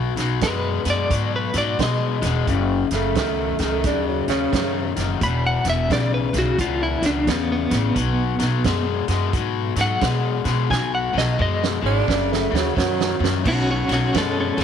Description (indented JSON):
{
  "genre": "electric blues shuffle",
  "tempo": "87 BPM",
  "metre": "4/4",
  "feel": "swing 63% on 8ths",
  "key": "B mixolydian",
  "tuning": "A4 = 439 Hz",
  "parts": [
    { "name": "breathy tenor saxophone", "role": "second line", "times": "0.0-5.1, 11.9-13.3 s", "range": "B2 to D4", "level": "-25 LUFS", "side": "right 10 dB", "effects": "none" },
    { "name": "overdriven semi-hollow guitar", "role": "riff", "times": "0.0-14.6 s", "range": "E2 to G#3", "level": "-24 LUFS", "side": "left 13 dB", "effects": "none" },
    { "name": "upright bass", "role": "bass", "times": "0.0-14.6 s", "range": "E1 to B2", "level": "-24 LUFS", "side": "equal", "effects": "none" },
    { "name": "vintage drum kit", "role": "drums", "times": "0.2-14.6 s", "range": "crash cymbal, hi-hat, kick drum, ride cymbal, snare drum", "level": "-26 LUFS", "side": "right 6 dB", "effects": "none" },
    { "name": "clean electric guitar", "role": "melody", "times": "0.4-14.6 s", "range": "B3 to B5", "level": "-24 LUFS", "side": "equal", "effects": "tremolo" }
  ],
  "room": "light reverb, small room ambience",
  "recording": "1960s-style stereo with parts hard left and right",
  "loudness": "-18 LUFS",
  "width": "side -8 dB against mid",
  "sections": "0.0-13.5 A section; 13.5-14.6 B section",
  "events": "drum fill 10.7-13.5; clean electric guitar solo 13.5-14.6",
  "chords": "0.0 B; 2.5 F#5; 5.2 E5; 8.0 B5; 12.1 F#5; 13.5 Bsus2",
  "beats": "0.42 1.10 1.79 | 2.47 3.16 3.84 4.53 | 5.21 5.90 6.59 7.27 | 7.96 8.65 9.33 10.02 | 10.71 11.39 12.08 12.77 | 13.46 14.14"
}